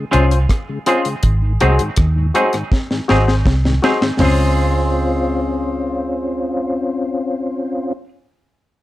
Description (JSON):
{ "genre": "roots reggae", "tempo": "81 BPM", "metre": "4/4", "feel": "straight", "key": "Db major", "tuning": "A4 = 441 Hz", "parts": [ { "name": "mellow tonewheel organ", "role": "accompaniment", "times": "0.0-7.9 s", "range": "Ab2 to Gb4", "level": "-22 LUFS", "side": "left 2 dB", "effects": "chorus vibrato, slow rotary speaker" }, { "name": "semi-hollow electric guitar", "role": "accompaniment", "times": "0.1-8.1 s", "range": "Gb3 to Ab4", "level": "-23 LUFS", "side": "right 4 dB", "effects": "spring reverb, tape echo" }, { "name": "percussive organ stab", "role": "stabs", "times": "0.1-8.0 s", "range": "Db4 to C5", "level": "-21 LUFS", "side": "left 4 dB", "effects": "chorus" }, { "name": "vintage muted fingered electric bass", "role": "bass", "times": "0.1-8.0 s", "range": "Ab1 to Eb2", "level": "-16 LUFS", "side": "equal", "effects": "none" }, { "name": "deep reggae drum kit", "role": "drums", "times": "0.1-4.4 s", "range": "hi-hat, kick drum, rim click, snare drum, toms", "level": "-18 LUFS", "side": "equal", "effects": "none" } ], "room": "light reverb", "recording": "none", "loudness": "-15 LUFS", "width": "side -15 dB against mid", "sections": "0.0-4.2 A section; 4.2-7.2 B section", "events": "drum fill 2.7-4.2", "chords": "0.0 Dbmaj7; 1.2 Ab7; 4.2 Dbmaj7", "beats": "0.49 | 1.23 1.98 2.72 3.46 | 4.20 4.94 5.69 6.43" }